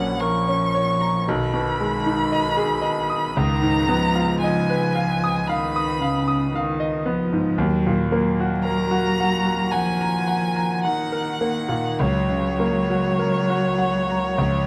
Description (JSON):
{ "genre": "classical, slow romantic movement for piano trio", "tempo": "50-58 BPM", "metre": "4/4", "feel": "rubato", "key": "F# major", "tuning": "A4 = 440 Hz", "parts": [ { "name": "rich violin", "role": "melody", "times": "0.0-14.7 s", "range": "C#5 to C#6", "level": "-28 LUFS", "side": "equal", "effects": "none" }, { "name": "rich cello", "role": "second line", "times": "0.0-14.7 s", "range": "C#3 to F#3", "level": "-27 LUFS", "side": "equal", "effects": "none" }, { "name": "bright concert grand piano", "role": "accompaniment", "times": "0.0-14.7 s", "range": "A#1 to D#6", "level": "-25 LUFS", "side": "equal", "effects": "none" } ], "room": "moderate recital hall reverb, RT60 1.7 s", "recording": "close, detailed microphones, vinyl crackle", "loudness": "-22 LUFS", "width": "mono", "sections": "0.0-14.7 A section", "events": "none", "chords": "0.0 F#/A#; 1.3 G#m/B; 3.4 C#13; 7.6 D#m; 12.0 F#/C#", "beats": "0.20 1.27 2.32 | 3.36 4.41 5.47 6.53 | 7.58 8.64 9.72 10.83 | 12.00 13.19 14.37" }